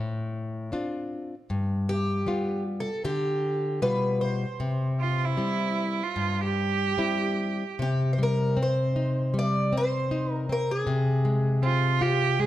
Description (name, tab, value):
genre	fado-style ballad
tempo	78 BPM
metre	4/4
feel	rubato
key	C major, C minor from 7.8 s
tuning	A4 = 442 Hz
part	nylon-string guitar	accompaniment	0.0-12.5 s	G2 to F4	-26 LUFS	left 1 dB	none
part	picked twelve-string acoustic guitar	melody	1.9-12.5 s	G4 to D5	-29 LUFS	equal	none
part	rich cello	second line	5.0-12.5 s	E4 to Ab4	-27 LUFS	right 7 dB	none
room	wet recital hall reverb, RT60 1.4 s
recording	close, detailed microphones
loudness	-24 LUFS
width	side -13 dB against mid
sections	0.0-7.8 A section; 7.8-12.5 B section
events	none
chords	0.0 Dm7; 1.5 G7; 4.6 C; 7.8 Cm; 10.9 Fmadd9/C